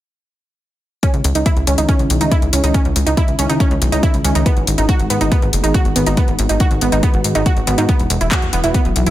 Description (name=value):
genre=uplifting trance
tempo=140 BPM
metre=4/4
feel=straight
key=C# minor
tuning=A4 = 440 Hz
part: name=lush unison pad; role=sustained chords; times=1.0-9.1 s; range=D#3 to F#4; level=-22 LUFS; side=left 1 dB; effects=chorus, vintage 12-bit sampler grit, sidechain pumping
part: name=wide unison pluck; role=arpeggios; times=1.0-9.1 s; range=B3 to F#4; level=-20 LUFS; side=right 3 dB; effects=sidechain pumping, digital delay
part: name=electronic kick drum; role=drums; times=1.0-8.8 s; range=none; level=-15 LUFS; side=equal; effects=overdrive, studio reverb
part: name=house drum kit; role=drums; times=1.0-9.1 s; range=handclaps, hi-hat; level=-23 LUFS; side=left 3 dB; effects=overdrive, sidechain pumping on hats, studio reverb
part: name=plucky analog bass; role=bass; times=1.1-9.1 s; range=E1 to G#2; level=-18 LUFS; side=equal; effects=sidechain pumping
room=light reverb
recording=none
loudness=-13 LUFS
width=side -14 dB against mid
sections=1.0-9.1 A section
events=filter sweep on analog synth pad 1.0-9.1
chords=1.0 C#madd9; 4.5 G#m7; 7.9 Esus2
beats=| 1.03 1.46 1.89 2.32 | 2.75 3.17 3.60 4.03 | 4.46 4.89 5.32 5.75 | 6.17 6.60 7.03 7.46 | 7.89 8.32 8.75